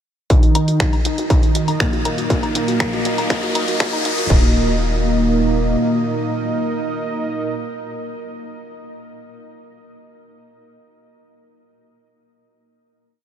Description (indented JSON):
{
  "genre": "melodic techno",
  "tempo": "120 BPM",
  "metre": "4/4",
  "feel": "straight",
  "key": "Eb minor",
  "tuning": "A4 = 440 Hz",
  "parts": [
    { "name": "wide unison lead", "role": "melody", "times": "0.3-7.5 s", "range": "Bb3 to Eb4", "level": "-24 LUFS", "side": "equal", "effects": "sidechain pumping, ping-pong delay" },
    { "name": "airy dreamy lead", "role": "second line", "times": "0.3-7.5 s", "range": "Bb2 to Eb3", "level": "-26 LUFS", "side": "right 1 dB", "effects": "chorus, cassette tape, sidechain pumping, tape echo" },
    { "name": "dark analog pad", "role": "sustained chords", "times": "1.7-7.5 s", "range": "Gb3 to Eb5", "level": "-29 LUFS", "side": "right 2 dB", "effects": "chorus, phaser, sidechain pumping" },
    { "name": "soft round pluck", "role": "arpeggios", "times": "0.3-4.5 s", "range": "Eb4 to Bb4", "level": "-30 LUFS", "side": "left 1 dB", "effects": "chorus, sidechain pumping, tape echo" },
    { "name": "electronic kick drum", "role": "drums", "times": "0.3-4.4 s", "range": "none", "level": "-16 LUFS", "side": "equal", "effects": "distortion" },
    { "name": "techno drum kit", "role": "drums", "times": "0.3-4.4 s", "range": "crash cymbal, finger snaps, hi-hat, woodblock", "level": "-25 LUFS", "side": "left 1 dB", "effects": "sidechain pumping on hats, high-pass filter on hats, sidechain pumping on perc, high-pass filter on perc, high-pass filter on snare, sidechain pumping on cymbals, high-pass filter on cymbals, high-pass filter on room" },
    { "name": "riser", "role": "sound effects", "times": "1.6-4.3 s", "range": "none", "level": "-28 LUFS", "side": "left 2 dB", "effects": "none" },
    { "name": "tight sequencer bass", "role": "bass", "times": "0.6-5.8 s", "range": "Eb1 to Bb1", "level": "-22 LUFS", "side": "equal", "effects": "sidechain pumping, high-pass filter" },
    { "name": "analog synth brass", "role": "stabs", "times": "1.7-7.5 s", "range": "Eb4 to Eb5", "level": "-27 LUFS", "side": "right 3 dB", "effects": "chorus, sidechain pumping, tape echo" }
  ],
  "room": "moderate huge ambient reverb, RT60 7.7 s",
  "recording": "dreamy mix soaked in reverb, high-pass filter",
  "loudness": "-16 LUFS",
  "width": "side -9 dB against mid",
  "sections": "0.3-4.3 build; 4.3-8.3 final chord",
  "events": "build-up 0.3-4.3; filter sweep on synth arpeggio sound 0.3-4.3; filter sweep 0.3-4.3; riser 1.6-4.3",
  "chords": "0.3 Ebm"
}